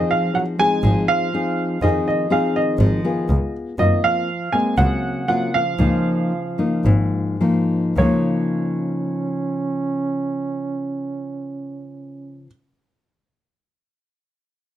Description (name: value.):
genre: bossa nova.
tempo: 104-122 BPM.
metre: 4/4.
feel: straight.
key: Db major.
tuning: A4 = 436 Hz.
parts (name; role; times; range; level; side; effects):
dark baby grand piano; melody; 0.0-12.5 s; Db5 to Ab5; -22 LUFS; right 2 dB; none.
dark trombone; second line; 0.0-12.4 s; Eb3 to Db4; -27 LUFS; right 4 dB; none.
nylon-string guitar; accompaniment; 0.0-12.5 s; Ab2 to Ab4; -22 LUFS; left 2 dB; none.
warm double bass; bass; 0.8-8.0 s; Ab1 to Gb2; -19 LUFS; equal; none.
room: little or no reverb.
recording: close, detailed microphones.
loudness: -18 LUFS.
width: side -12 dB against mid.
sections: 0.0-8.0 A section; 8.0-12.6 B section.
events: slowing down 3.8-8.0.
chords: 0.0 Ab6; 3.3 Db7 (rootless); 3.8 Gbmaj7#11; 5.8 Db69.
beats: 0.35 0.84 1.33 | 1.82 2.31 2.81 3.30 | 3.79 4.28 4.78 5.28 | 5.80 6.32 6.86 7.41 | 7.97 8.55 9.13 9.71 | 10.29 10.87 11.44 12.02.